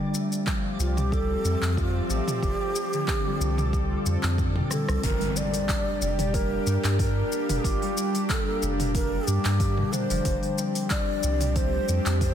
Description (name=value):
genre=organic downtempo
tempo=92 BPM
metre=4/4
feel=swing 54% on 16ths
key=G minor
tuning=A4 = 442 Hz
part: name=bowed-like drone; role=sustained chords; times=0.0-12.3 s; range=F3 to A4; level=-33 LUFS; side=equal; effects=built-in reverb, sidechain pumping, shimmer reverb
part: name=concert harp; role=arpeggios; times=0.0-12.3 s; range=D3 to G4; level=-31 LUFS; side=left 2 dB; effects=ping-pong delay
part: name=twinkling granular texture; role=texture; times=0.0-5.0 s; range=D5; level=-44 LUFS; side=right 2 dB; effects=built-in reverb, shimmer reverb
part: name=deep house drum kit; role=drums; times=0.1-12.3 s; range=handclaps, hi-hat, rim click, shaker, toms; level=-32 LUFS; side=equal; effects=studio reverb
part: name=electronic kick drum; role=drums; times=0.5-12.3 s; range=none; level=-29 LUFS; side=equal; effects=studio reverb
part: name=breathy low Native American-style wooden flute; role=melody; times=0.8-12.3 s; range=F4 to D5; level=-31 LUFS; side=right 1 dB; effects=ping-pong delay, shimmer reverb
part: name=warm sub bass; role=bass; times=0.8-12.3 s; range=F1 to G2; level=-26 LUFS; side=equal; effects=sidechain pumping
part: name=impact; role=sound effects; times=5.0-7.6 s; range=none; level=-33 LUFS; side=right 1 dB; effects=none
room=light reverb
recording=dense, heavily limited modern master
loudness=-23 LUFS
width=side -9 dB against mid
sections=0.0-5.0 A section; 5.0-12.3 B section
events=drum fill 4.7-5.0; impact 5.0-7.6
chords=0.0 Fadd9